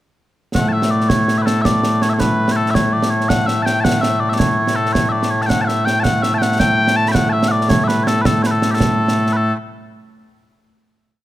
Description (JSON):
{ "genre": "scottish traditional, Scottish pipe music", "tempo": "109 BPM (dotted quarters)", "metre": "6/8", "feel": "straight", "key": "A mixolydian", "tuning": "A4 = 440 Hz", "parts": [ { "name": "concert snare drum and concert bass drum", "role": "drums", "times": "0.5-9.3 s", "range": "none", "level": "-19 LUFS", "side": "right 2 dB", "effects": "none" }, { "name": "mellow small bagpipes", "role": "melody", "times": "0.6-9.5 s", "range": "A2 to B5", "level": "-15 LUFS", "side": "left 1 dB", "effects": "none" } ], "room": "light reverb", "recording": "close, detailed microphones", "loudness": "-14 LUFS", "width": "side -14 dB against mid", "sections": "0.6-9.4 A section; 9.4-10.5 final note", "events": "none", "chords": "none" }